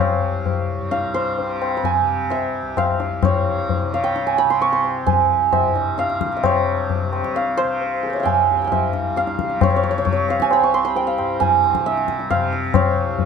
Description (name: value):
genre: indian classical, Hindustani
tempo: 132 BPM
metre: 7/4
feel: straight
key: C raga bhairav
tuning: A4 = 438 Hz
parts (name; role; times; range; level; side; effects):
- santur; melody; 0.0-13.3 s; Ab4 to Db6; -19 LUFS; right 3 dB; none
- tanpura; drone; 0.0-13.3 s; C2 to C3; -27 LUFS; right 1 dB; none
- tabla; percussion; 0.5-13.3 s; none; -22 LUFS; left 6 dB; none
room: little or no reverb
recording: close, detailed microphones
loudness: -17 LUFS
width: side -6 dB against mid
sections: 0.0-6.4 A section; 6.4-13.3 B section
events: speeding up 0.0-13.3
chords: none